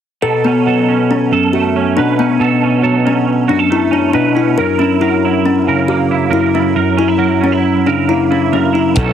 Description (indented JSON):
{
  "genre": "math rock and midwest emo",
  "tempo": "137 BPM",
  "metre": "5/4",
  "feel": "straight",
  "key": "B minor",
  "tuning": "A4 = 440 Hz",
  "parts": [
    { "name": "twangy electric guitar", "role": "accompaniment", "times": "0.2-9.1 s", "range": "F#2 to B4", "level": "-14 LUFS", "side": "right 6 dB", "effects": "ensemble chorus" },
    { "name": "kalimba", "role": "arpeggios", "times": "0.2-9.1 s", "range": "B3 to A#4", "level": "-13 LUFS", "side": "left 4 dB", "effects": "none" },
    { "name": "fuzz fingered electric bass", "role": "bass", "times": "9.0-9.1 s", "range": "B1", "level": "-16 LUFS", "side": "right 1 dB", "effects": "overdrive" },
    { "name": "crisp fusion drum kit", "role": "drums", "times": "9.0-9.1 s", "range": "hi-hat, kick drum", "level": "-16 LUFS", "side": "equal", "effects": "none" }
  ],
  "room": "moderate small room reverb, RT60 0.5 s",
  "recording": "heavily compressed radio sound",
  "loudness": "-11 LUFS",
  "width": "side -9 dB against mid",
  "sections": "0.2-9.1 A section",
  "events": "none",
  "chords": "0.2 Bm9; 4.6 F#7"
}